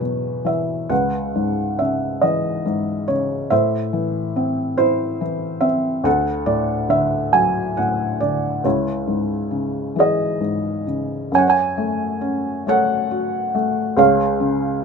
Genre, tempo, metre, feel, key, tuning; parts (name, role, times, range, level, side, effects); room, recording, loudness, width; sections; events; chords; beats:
classical, lyrical solo piano; 46 BPM (dotted quarters); 6/8; rubato; C# minor, F# harmonic minor from 11.3 s; A4 = 439 Hz
felt-muted upright piano; solo; 0.0-14.8 s; C#2 to G#5; -18 LUFS; equal
light reverb; close, detailed microphones; -18 LUFS; side -5 dB against mid
0.0-11.3 A section; 11.3-14.8 B section
0.0 Esus2; 0.9 C#m7; 3.5 Am; 6.1 D; 8.7 C#madd9; 11.3 F#madd9; 14.0 C#
| 0.91 2.23 | 3.51 4.79 | 6.06 7.34 | 8.65 9.98 | 11.34 12.68 | 13.99